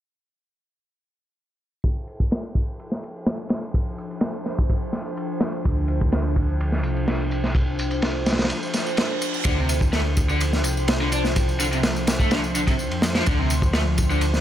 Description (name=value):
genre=breakbeat, breaks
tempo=126 BPM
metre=4/4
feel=straight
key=D minor pentatonic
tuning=A4 = 440 Hz
part: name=warbly tape-like pad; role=sustained chords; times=3.2-14.4 s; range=F3 to C5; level=-29 LUFS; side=equal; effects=chorus, built-in reverb, phaser, sidechain pumping
part: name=crunchy breakbeat drum kit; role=drums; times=1.8-14.4 s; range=kick drum, ride cymbal, snare drum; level=-23 LUFS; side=equal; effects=none
part: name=tambourine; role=drums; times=1.8-14.4 s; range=none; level=-34 LUFS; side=left 1 dB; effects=none
part: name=picked electric bass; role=bass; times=5.7-14.4 s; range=C2 to F2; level=-24 LUFS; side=equal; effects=tube saturation
part: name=reverse cymbal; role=sound effects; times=8.7-9.5 s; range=none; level=-31 LUFS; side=right 6 dB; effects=none
part: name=raw garage guitar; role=riff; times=9.5-14.2 s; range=C3 to D4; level=-26 LUFS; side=left 1 dB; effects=overdrive, dub echo
room=studio ambience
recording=low-pass filter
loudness=-20 LUFS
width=side -11 dB against mid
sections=1.8-9.5 A section; 9.5-14.4 B section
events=filter sweep on ambient pad 1.8-9.5; filter sweep 1.8-9.5; kick drops out 8.5-9.5; reverse cymbal 8.7-9.5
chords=1.8 Dm7